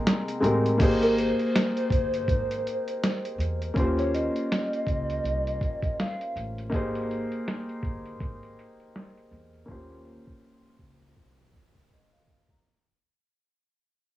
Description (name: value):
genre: lo-fi hip hop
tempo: 81 BPM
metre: 4/4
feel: swing 57% on 16ths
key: Ab major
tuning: A4 = 438 Hz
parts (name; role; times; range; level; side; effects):
- felt-muted upright piano; accompaniment; 0.0-12.8 s; Ab3 to Bb5; -28 LUFS; left 1 dB; cassette tape
- lush unison pad; sustained chords; 0.0-0.8 s; C3 to G4; -42 LUFS; right 3 dB; none
- dusty soul sampler-style drum kit; drums; 0.1-12.6 s; crash cymbal, hi-hat, kick drum, snare drum; -28 LUFS; equal; vintage 12-bit sampler grit, cassette tape
- upright bass; bass; 0.4-12.6 s; G1 to Fb2; -32 LUFS; equal; none
- warbly nostalgic lead; melody; 1.0-6.3 s; Bb4 to F5; -30 LUFS; equal; chorus, cassette tape, analog delay
room: moderate studio reverb, RT60 0.6 s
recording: home recording on cassette, low-pass filter, small room ambience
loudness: -24 LUFS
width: side -14 dB against mid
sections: 0.8-12.6 A section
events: fade-out 0.8-12.6; filter sweep 0.8-12.6; drum fill 11.9-12.6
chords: 0.0 Abmaj9; 0.8 Abmaj7; 3.8 Eb13; 6.7 Abmaj7; 9.7 Eb13